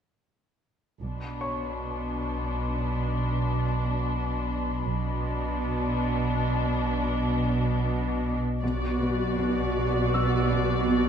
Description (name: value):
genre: cinematic, suspense film score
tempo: 79 BPM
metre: 5/4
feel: straight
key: B minor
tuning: A4 = 437 Hz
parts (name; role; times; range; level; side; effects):
- muted studio violin section; melody; 1.0-11.1 s; D4 to D5; -32 LUFS; left 2 dB; none
- muted studio cello section; bass; 1.0-11.1 s; B2; -29 LUFS; right 3 dB; none
- muted studio double bass section; bass; 1.0-11.1 s; B1; -33 LUFS; right 3 dB; none
- deep rumbling drone; drone; 1.5-11.1 s; B1; -31 LUFS; left 1 dB; built-in reverb
- muted studio violin section; texture; 1.0-8.2 s; B5 to C6; -38 LUFS; left 4 dB; none
- bright grand piano; texture; 1.4-11.1 s; C#5 to E6; -38 LUFS; left 1 dB; none
- muted studio viola section; accompaniment; 8.6-11.1 s; B3 to F#4; -28 LUFS; left 1 dB; none
- muted studio cello section; riff; 8.6-11.1 s; B2 to B3; -32 LUFS; equal; none
room: moderate concert hall reverb, RT60 2.4 s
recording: dark, warm production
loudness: -25 LUFS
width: side -8 dB against mid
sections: 1.0-8.6 A section; 8.6-11.1 B section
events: none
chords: 1.0 Bm